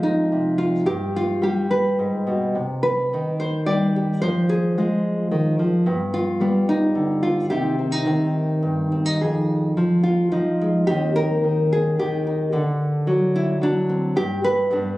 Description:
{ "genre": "folk, solo fingerstyle acoustic guitar", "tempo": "109 BPM", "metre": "3/4", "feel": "rubato", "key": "C harmonic minor", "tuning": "A4 = 441 Hz", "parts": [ { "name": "nylon-string guitar", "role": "solo", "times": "0.0-15.0 s", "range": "Eb2 to D5", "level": "-19 LUFS", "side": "equal", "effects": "none" } ], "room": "moderate concert hall reverb, RT60 2.3 s", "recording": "recorded on a phone in the room, club reverb, compression", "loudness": "-19 LUFS", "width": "side -18 dB against mid", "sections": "0.0-9.2 A section; 9.2-15.0 B section", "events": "none", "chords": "0.0 Fm; 0.9 G; 2.6 Cm; 4.2 Fm; 5.9 G; 7.5 Cm; 9.2 Fm7; 10.9 Cm/Eb; 12.5 D7; 14.2 N.C.", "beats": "0.32 | 0.88 1.43 1.99 | 2.56 3.12 3.67 | 4.22 4.77 5.31 | 5.85 6.40 6.95 | 7.50 8.05 8.62 | 9.20 9.76 10.32 | 10.88 11.44 11.99 | 12.53 13.08 13.62 | 14.17 14.72" }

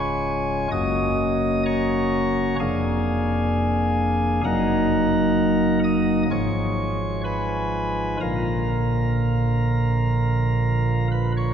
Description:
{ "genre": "classical, chorale-style piece for pipe organ", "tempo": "64 BPM", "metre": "4/4", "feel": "rubato", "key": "unclear", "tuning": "A4 = 442 Hz", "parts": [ { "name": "chamber organ, flutes", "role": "solo", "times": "0.0-11.5 s", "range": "Db1 to Eb6", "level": "-20 LUFS", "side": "equal", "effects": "none" } ], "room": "wet church reverb, RT60 3.5 s", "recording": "heard from further back in the room, nothing above 7.7 kHz", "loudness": "-20 LUFS", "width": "side -8 dB against mid", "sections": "0.0-11.5 A section", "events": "none", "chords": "0.0 Db; 0.7 Gb; 2.6 Bb7/F; 4.4 Ebm/Gb; 6.3 Fdim/Ab; 8.2 Bb", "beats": "| 0.72 1.66 2.59 3.52 | 4.45 5.37 6.29 7.23 | 8.20 9.18 10.15 11.11" }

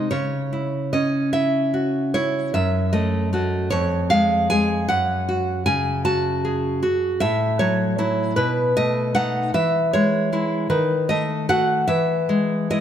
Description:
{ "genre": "romantic piece for solo classical guitar", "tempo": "51 BPM (dotted quarters)", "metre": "6/8", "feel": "rubato", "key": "E major from 7.2 s", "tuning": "A4 = 440 Hz", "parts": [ { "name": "nylon-string guitar", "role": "solo", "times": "0.0-12.8 s", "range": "F2 to A5", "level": "-19 LUFS", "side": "equal", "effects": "none" } ], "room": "moderate concert hall reverb, RT60 2.4 s", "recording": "none", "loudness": "-19 LUFS", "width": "side -9 dB against mid", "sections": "0.0-12.8 A section", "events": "none", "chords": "0.1 C#m; 2.5 F#m; 3.7 Fm; 4.9 F#m; 7.2 F#m7/A; 8.4 B7; 9.5 E; 10.7 D#dim; 11.9 E", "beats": "| 0.12 1.34 | 2.55 3.72 | 4.90 6.06 | 7.22 8.38 | 9.54 10.69 | 11.88" }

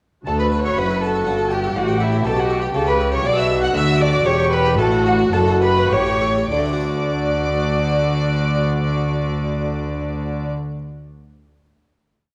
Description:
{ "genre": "classical, baroque-style concerto movement with solo episodes", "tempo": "96-123 BPM", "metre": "3/4", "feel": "straight", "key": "D major", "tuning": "A4 = 438 Hz", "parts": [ { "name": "dark chamber violin section", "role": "melody", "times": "0.3-10.5 s", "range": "E5 to F#6", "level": "-28 LUFS", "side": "equal", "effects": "none" }, { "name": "rich violin", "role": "melody", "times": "0.3-10.5 s", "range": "E4 to F#5", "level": "-26 LUFS", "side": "equal", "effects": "none" }, { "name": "rich chamber violin section", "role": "second line", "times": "0.3-10.5 s", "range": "E4 to F#5", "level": "-29 LUFS", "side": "equal", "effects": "none" }, { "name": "harpsichord", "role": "accompaniment", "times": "0.3-10.8 s", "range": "D2 to D5", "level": "-30 LUFS", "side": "equal", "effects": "none" }, { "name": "rich chamber viola section", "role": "accompaniment", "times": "0.3-10.5 s", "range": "F#4 to G4", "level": "-27 LUFS", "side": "equal", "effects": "none" }, { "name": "rich chamber cello section", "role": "bass", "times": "0.3-10.5 s", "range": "D2 to D3", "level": "-25 LUFS", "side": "equal", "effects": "none" }, { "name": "rich chamber double bass section", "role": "bass", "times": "0.3-10.5 s", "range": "E1 to D2", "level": "-27 LUFS", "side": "equal", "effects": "none" } ], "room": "wet recital hall reverb, RT60 1.6 s", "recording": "worn, warbling old tape, cassette tape, warbly pitch drift", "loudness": "-19 LUFS", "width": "mono", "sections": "0.3-6.5 ritornello; 6.5-10.3 final chord", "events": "slowing down 2.5-6.5", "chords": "0.3 D; 1.8 A7; 3.2 Bm; 4.3 Em; 4.8 D/A; 5.9 A7; 6.5 D", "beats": "| 0.27 0.77 1.27 | 1.76 2.25 2.74 | 3.24 3.74 4.25 | 4.78 5.33 5.91 | 6.52 7.15 7.77 | 8.40 9.02 9.64" }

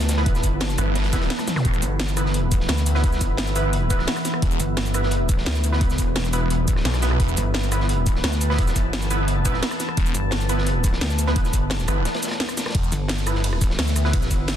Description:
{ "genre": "dark technical drum and bass", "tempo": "173 BPM", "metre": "4/4", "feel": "straight", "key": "E minor", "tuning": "A4 = 439 Hz", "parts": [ { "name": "deep dark ambient pad", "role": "sustained chords", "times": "0.0-14.6 s", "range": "E3 to A5", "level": "-29 LUFS", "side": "left 1 dB", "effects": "chorus, built-in reverb, sidechain pumping" }, { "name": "pulsing pluck wobble bass", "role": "bass", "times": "0.0-14.6 s", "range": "E1 to D2", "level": "-23 LUFS", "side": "equal", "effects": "chorus" }, { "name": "crunchy breakbeat drum kit", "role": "drums", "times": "0.0-14.6 s", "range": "hi-hat, snare drum", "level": "-34 LUFS", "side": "equal", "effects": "high-pass filter on hats, high-pass filter on snare, high-pass filter on room" }, { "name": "drum and bass drum kit", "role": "drums", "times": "0.0-14.6 s", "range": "cabasa, hi-hat, ride cymbal, rim click, snare drum, toms", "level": "-27 LUFS", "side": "equal", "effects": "none" }, { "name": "orchestra-hit-like synth stab", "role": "stabs", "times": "0.2-14.6 s", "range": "B3 to B4", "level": "-29 LUFS", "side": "right 3 dB", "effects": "built-in reverb, ping-pong delay" }, { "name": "electronic kick drum", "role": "drums", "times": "0.3-14.4 s", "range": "none", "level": "-22 LUFS", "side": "equal", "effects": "none" }, { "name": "phased detuned saw bass", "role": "bass", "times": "0.8-1.8, 4.4-4.6, 6.9-7.4, 10.0-12.9 s", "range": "E1 to B1", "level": "-22 LUFS", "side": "equal", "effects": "phaser, sidechain pumping" }, { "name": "zap", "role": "sound effects", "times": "1.6 s", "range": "none", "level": "-33 LUFS", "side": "left 1 dB", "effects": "none" } ], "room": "little or no reverb", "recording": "dense, heavily limited modern master", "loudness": "-19 LUFS", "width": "side -10 dB against mid", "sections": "0.0-12.7 A section; 12.7-14.6 A section", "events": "drop 0.0-12.7, 12.7-14.6; drum fill 1.4; break 12.1-12.7", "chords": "0.0 E5", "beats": "| 0.26 0.61 0.95 1.30 | 1.65 2.00 2.34 2.69 | 3.04 3.38 3.73 4.08 | 4.42 4.77 5.12 5.46 | 5.81 6.16 6.50 6.85 | 7.20 7.54 7.89 8.24 | 8.59 8.93 9.28 9.63 | 9.97 10.32 10.67 11.01 | 11.36 11.71 12.05 12.40 | 12.75 13.09 13.44 13.79 | 14.13 14.48" }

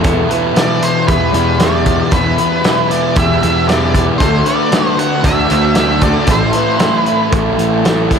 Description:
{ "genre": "rock, shoegaze and dream pop", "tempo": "115 BPM", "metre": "4/4", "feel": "straight", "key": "E minor", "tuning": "A4 = 445 Hz", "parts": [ { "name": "electric guitar through a small old amp", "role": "arpeggios", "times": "0.0-8.2 s", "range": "G4 to B5", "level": "-22 LUFS", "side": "left 2 dB", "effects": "lush chorus, digital delay" }, { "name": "raw garage guitar", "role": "riff", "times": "0.0-8.2 s", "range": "A2 to F#4", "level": "-18 LUFS", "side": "right 13 dB", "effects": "overdrive, reverse reverb" }, { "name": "thick fuzz guitar", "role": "riff", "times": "0.0-8.2 s", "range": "E2 to D4", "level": "-17 LUFS", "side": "left 10 dB", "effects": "distortion, wide subtle chorus" }, { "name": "fuzz picked electric bass", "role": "bass", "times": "0.0-8.2 s", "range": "A1 to E2", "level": "-17 LUFS", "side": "right 1 dB", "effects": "overdrive" }, { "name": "loose indie drum kit", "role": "drums", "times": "0.0-8.2 s", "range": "hi-hat, kick drum, snare drum", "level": "-17 LUFS", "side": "equal", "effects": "none" }, { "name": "octave-fuzz lead guitar", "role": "melody", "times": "0.6-7.3 s", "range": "B4 to F#5", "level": "-18 LUFS", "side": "left 1 dB", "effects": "distortion" } ], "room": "light reverb, studio ambience", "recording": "none", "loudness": "-11 LUFS", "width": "side -6 dB against mid", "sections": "0.0-8.2 A section", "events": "none", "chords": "0.0 Em7; 4.2 D7; 6.3 Am", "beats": "| 0.04 0.56 1.07 1.59 | 2.12 2.64 3.16 3.68 | 4.20 4.72 5.24 5.76 | 6.28 6.80 7.32 7.84" }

